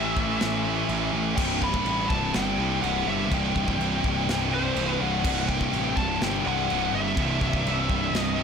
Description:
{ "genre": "heavy metal", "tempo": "124 BPM", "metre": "4/4", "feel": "straight", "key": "unclear", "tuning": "A4 = 440 Hz", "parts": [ { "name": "high-gain lead guitar", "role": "melody", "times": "0.0-8.4 s", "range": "C5 to B5", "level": "-30 LUFS", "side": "left 3 dB", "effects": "distortion, ping-pong delay" }, { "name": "scooped high-gain guitar", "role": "riff", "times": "0.0-8.4 s", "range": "C2 to A3", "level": "-28 LUFS", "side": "right 12 dB", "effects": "distortion" }, { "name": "thick fuzz guitar", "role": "riff", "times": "0.0-8.4 s", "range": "C2 to A3", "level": "-32 LUFS", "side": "left 1 dB", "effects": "distortion" }, { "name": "tight distorted guitar", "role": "riff", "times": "0.0-8.4 s", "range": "C2 to E3", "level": "-32 LUFS", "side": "left 13 dB", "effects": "distortion" }, { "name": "fuzz picked electric bass", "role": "bass", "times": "0.0-8.4 s", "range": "C1 to C2", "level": "-30 LUFS", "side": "equal", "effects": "overdrive" }, { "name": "modern studio drum kit", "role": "drums", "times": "0.2-8.3 s", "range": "china cymbal, crash cymbal, kick drum, snare drum", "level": "-31 LUFS", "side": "equal", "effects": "none" } ], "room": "small room ambience", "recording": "blown-out, overdriven recording, overdrive", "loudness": "-22 LUFS", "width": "side -6 dB against mid", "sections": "0.0-8.4 A section", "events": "none", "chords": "0.0 A5; 1.4 C" }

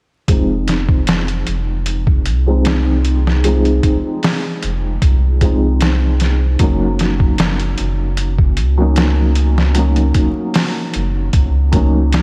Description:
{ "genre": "trip hop", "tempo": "76 BPM", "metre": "4/4", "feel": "swing 53% on 16ths", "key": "F phrygian", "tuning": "A4 = 436 Hz", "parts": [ { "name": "felt-muted upright piano", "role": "accompaniment", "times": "0.3-12.2 s", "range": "F3 to Eb4", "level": "-22 LUFS", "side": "equal", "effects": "tremolo, low-pass filter, tape echo" }, { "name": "soft dub sub bass", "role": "bass", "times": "0.3-12.2 s", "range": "F1 to Db2", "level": "-18 LUFS", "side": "equal", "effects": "none" }, { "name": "trip hop sampler-style drum kit", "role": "drums", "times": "0.3-12.2 s", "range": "hi-hat, kick drum, snare drum", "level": "-19 LUFS", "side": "equal", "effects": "studio reverb" } ], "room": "light reverb", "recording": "vinyl crackle", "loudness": "-15 LUFS", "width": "mono", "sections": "0.3-12.2 A section", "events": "filter sweep on felt piano 0.3-12.2", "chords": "0.3 Fm7; 6.6 Ebm7/Gb" }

